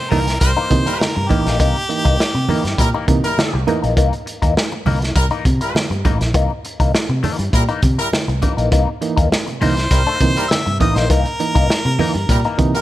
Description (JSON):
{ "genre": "funk", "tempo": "101 BPM", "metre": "4/4", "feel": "straight", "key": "C mixolydian", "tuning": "A4 = 439 Hz", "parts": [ { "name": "clear harmonica", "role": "melody", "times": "0.0-3.1, 9.6-12.8 s", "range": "G4 to E5", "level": "-22 LUFS", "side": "equal", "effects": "none" }, { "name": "barky reed electric piano", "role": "stabs", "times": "0.0-3.8, 8.7-12.8 s", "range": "C3 to D#4", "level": "-23 LUFS", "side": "right 5 dB", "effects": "overdrive, fast tremolo" }, { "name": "clean electric guitar", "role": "accompaniment", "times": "0.1-12.8 s", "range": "E3 to D#4", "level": "-23 LUFS", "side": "left 6 dB", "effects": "wah" }, { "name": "vintage muted fingered electric bass", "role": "bass", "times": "0.1-12.7 s", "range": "A1 to C3", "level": "-19 LUFS", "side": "equal", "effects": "none" }, { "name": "crunchy breakbeat drum kit", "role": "drums", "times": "0.1-12.8 s", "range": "hi-hat, kick drum, snare drum", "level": "-18 LUFS", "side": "equal", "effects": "none" }, { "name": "congas", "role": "percussion", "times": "0.1-12.7 s", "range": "none", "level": "-26 LUFS", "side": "right 2 dB", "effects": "none" }, { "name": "clear horn section", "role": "second line", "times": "0.4-12.8 s", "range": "G3 to Bb4", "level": "-24 LUFS", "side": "equal", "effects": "none" } ], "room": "little or no reverb", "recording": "none", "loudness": "-14 LUFS", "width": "side -14 dB against mid", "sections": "0.0-12.8 A section", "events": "none", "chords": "0.0 C7#9" }